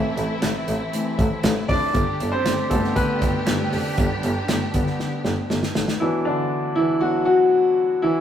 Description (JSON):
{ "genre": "piano-driven pop", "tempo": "118 BPM", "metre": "4/4", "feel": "straight", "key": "unclear", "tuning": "A4 = 438 Hz", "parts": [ { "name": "warm upright piano", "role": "accompaniment", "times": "0.0-8.2 s", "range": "D3 to E5", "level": "-21 LUFS", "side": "left 1 dB", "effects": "none" }, { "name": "warm symphonic string section", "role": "sustained chords", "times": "0.0-6.0 s", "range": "C3 to G4", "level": "-29 LUFS", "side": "right 2 dB", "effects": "none" }, { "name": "bright double bass", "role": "bass", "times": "0.2-5.8 s", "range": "F1 to A1", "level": "-25 LUFS", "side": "right 1 dB", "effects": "none" }, { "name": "natural country drum kit", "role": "drums", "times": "0.2-6.0 s", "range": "handclaps, hi-hat, kick drum, snare drum", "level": "-24 LUFS", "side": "equal", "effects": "none" } ], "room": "moderate stone room reverb, RT60 1.1 s", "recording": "rough rehearsal-room recording", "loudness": "-19 LUFS", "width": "side -9 dB against mid", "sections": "0.0-6.0 A section; 6.0-8.2 B section", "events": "upright piano solo 0.0-6.0, 6.0-8.2; drum fill 5.0-6.0", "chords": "0.0 Am; 2.0 G; 6.0 Bm" }